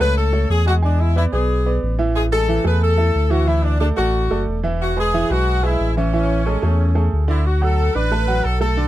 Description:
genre	latin, salsa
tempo	181 BPM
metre	4/4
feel	straight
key	unclear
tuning	A4 = 444 Hz
part	brilliant horn section	melody	0.0-8.9 s	C#4 to B4	-21 LUFS	left 2 dB	none
part	bright baby grand piano	accompaniment	0.0-8.9 s	D3 to D6	-23 LUFS	right 4 dB	none
part	sub bass with octave	bass	0.0-8.9 s	E1 to E2	-18 LUFS	equal	none
room	little or no reverb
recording	dry, close 1970s-style studio recording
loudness	-16 LUFS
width	side -14 dB against mid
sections	0.0-7.5 A section; 7.5-8.9 B section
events	none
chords	0.0 F#madd9 (rootless); 0.8 E7; 2.2 A5; 3.5 Dadd9; 4.8 Eadd9; 6.1 Amaj7; 7.5 D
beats	0.16 0.50 | 0.83 1.16 1.49 1.82 | 2.15 2.48 2.82 3.15 | 3.48 3.81 4.14 4.47 | 4.80 5.14 5.47 5.80 | 6.13 6.46 6.79 7.12 | 7.46 7.79 8.12 8.45 | 8.78

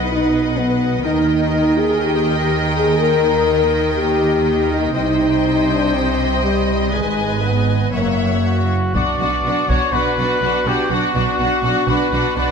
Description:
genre	cinematic, epic orchestral film score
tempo	122 BPM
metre	4/4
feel	straight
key	B minor from 8.9 s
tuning	A4 = 440 Hz
part	rich symphonic violin section	melody	0.0-12.5 s	F#5 to G#5	-28 LUFS	left 4 dB	none
part	rich studio violin section	second line	0.0-12.5 s	F#4 to E5	-25 LUFS	left 3 dB	none
part	rich symphonic viola section	accompaniment	0.0-12.5 s	D4 to C#5	-26 LUFS	right 2 dB	none
part	mellow French horn section	sustained chords	0.0-12.5 s	G3 to A#4	-19 LUFS	left 3 dB	none
part	clear symphonic double bass section	bass	0.0-12.4 s	F#1 to D#2	-23 LUFS	right 4 dB	none
part	rich studio cello section	bass	0.0-12.4 s	F#2 to D#3	-23 LUFS	right 3 dB	none
part	clear trumpet	stabs	8.4-12.5 s	F#4 to D5	-20 LUFS	equal	none
part	taiko ensemble	drums	8.9-9.9 s	none	-23 LUFS	left 1 dB	none
room	wet scoring stage reverb, RT60 2.0 s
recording	none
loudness	-15 LUFS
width	side -6 dB against mid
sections	0.0-8.9 A section; 8.9-12.5 B section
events	none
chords	0.0 B; 1.0 D#; 5.0 Cm; 6.9 G#m; 7.9 F#7; 8.9 Bm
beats	0.07 0.56 | 1.04 1.53 2.02 2.51 | 3.00 3.49 3.98 4.47 | 4.96 5.45 5.94 6.43 | 6.93 7.43 7.93 8.44 | 8.95 9.44 9.93 10.42 | 10.91 11.40 11.89 12.38

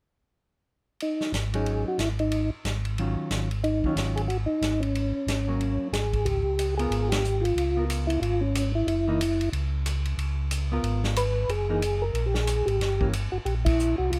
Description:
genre	soul jazz organ trio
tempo	183 BPM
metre	4/4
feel	swing 62% on 8ths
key	Db mixolydian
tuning	A4 = 440 Hz
part	percussive tonewheel organ	melody	1.0-14.2 s	Db4 to Cb5	-29 LUFS	equal	slow rotary speaker, chorus vibrato
part	vintage drum kit	drums	1.0-14.2 s	hi-hat, kick drum, ride cymbal, rim click, snare drum	-35 LUFS	equal	none
part	mellow tonewheel organ	bass	1.3-14.2 s	Gb1 to Db2	-30 LUFS	equal	chorus vibrato, slow rotary speaker
part	hollow-body jazz guitar	accompaniment	1.5-13.1 s	Eb3 to Bb4	-34 LUFS	equal	none
room	little or no reverb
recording	none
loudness	-27 LUFS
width	mono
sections	1.0-6.3 A section; 6.3-14.2 B section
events	band accent 7.1, 13.6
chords	1.0 Ab7sus4; 2.3 Ebm9; 4.9 Ab9sus4; 6.3 Db6; 8.9 Gb5; 10.2 Db6; 11.5 Gbadd9; 12.8 Gm6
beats	| 1.01 1.34 1.67 1.99 | 2.32 2.65 2.98 3.31 | 3.63 3.96 4.29 4.62 | 4.95 5.28 5.60 5.93 | 6.26 6.58 6.91 7.24 | 7.57 7.89 8.22 8.55 | 8.88 9.20 9.53 9.86 | 10.18 10.51 10.84 11.17 | 11.49 11.82 12.15 12.47 | 12.80 13.13 13.46 13.79 | 14.11

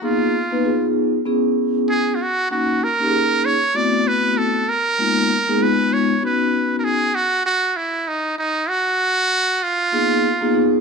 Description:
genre	hip hop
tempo	97 BPM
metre	4/4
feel	swing 58% on 16ths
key	unclear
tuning	A4 = 440 Hz
part	trumpet with metal mute	melody	0.0-10.8 s	D#4 to D5	-19 LUFS	right 2 dB	none
part	vibraphone with soft mallets	accompaniment	0.0-10.8 s	G#3 to B4	-18 LUFS	left 2 dB	none
room	light reverb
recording	nothing above 10.4 kHz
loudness	-16 LUFS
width	side -5 dB against mid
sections	0.0-7.5 A section; 7.5-10.8 A section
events	none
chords	0.0 G#m69/A#; 0.7 G#m6/B; 1.3 E69/B; 2.5 F#69/A#; 3.7 Am69; 5.0 G#m69; 5.6 C#7; 6.2 Badd9; 7.5 N.C.; 9.9 G#m69/A#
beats	| 0.03 0.65 1.27 1.89 | 2.51 3.12 3.74 4.36 | 4.98 5.60 6.22 6.84 | 7.46 8.07 8.69 9.31 | 9.93 10.55

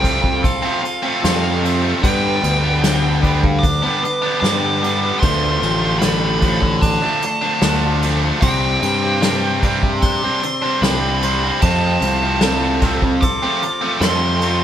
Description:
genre	post-rock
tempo	75 BPM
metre	4/4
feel	straight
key	unclear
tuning	A4 = 444 Hz
part	biting lead guitar	melody	0.0-14.6 s	F5 to D6	-21 LUFS	equal	overdrive
part	electric guitar through a small old amp	arpeggios	0.0-14.6 s	B3 to D5	-29 LUFS	right 3 dB	none
part	twangy electric guitar	arpeggios	0.0-14.6 s	G2 to A4	-27 LUFS	left 4 dB	none
part	tight distorted guitar	riff	0.0-14.6 s	F2 to D4	-20 LUFS	right 1 dB	distortion
part	fuzz picked electric bass	bass	0.0-14.6 s	A1 to G2	-20 LUFS	equal	overdrive
part	soft brush drum kit	drums	0.0-14.6 s	crash cymbal, kick drum, snare drum	-21 LUFS	equal	none
room	moderate stone room reverb, RT60 1.3 s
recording	band playing live in one room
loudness	-14 LUFS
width	side -10 dB against mid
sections	0.0-14.6 A section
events	none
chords	0.0 Fadd9; 2.0 G; 5.2 Dm; 8.4 Csus2; 11.6 Fadd9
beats	0.44 1.24 | 2.04 2.83 3.63 4.43 | 5.23 6.03 6.83 7.63 | 8.43 9.23 10.03 10.82 | 11.62 12.42 13.22 14.02

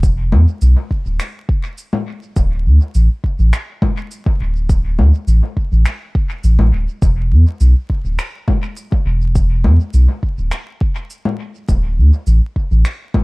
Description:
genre	ambient dub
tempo	103 BPM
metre	4/4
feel	straight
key	unclear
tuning	A4 = 444 Hz
part	warm sub bass	bass	0.0-12.8 s	D1 to E2	-11 LUFS	equal	none
part	electronic cabasa, congas and finger snaps	drums	0.0-13.2 s	none	-23 LUFS	left 3 dB	dub echo
part	electronic kick drum	drums	0.0-13.2 s	none	-16 LUFS	equal	none
room	little or no reverb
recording	echo-heavy mix, vinyl crackle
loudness	-13 LUFS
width	side -26 dB against mid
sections	0.0-13.2 A section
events	none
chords	none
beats	| 0.04 0.62 1.20 1.78 | 2.37 2.95 3.53 4.11 | 4.70 5.28 5.86 6.44 | 7.03 7.61 8.19 8.77 | 9.36 9.94 10.52 11.10 | 11.69 12.27 12.85

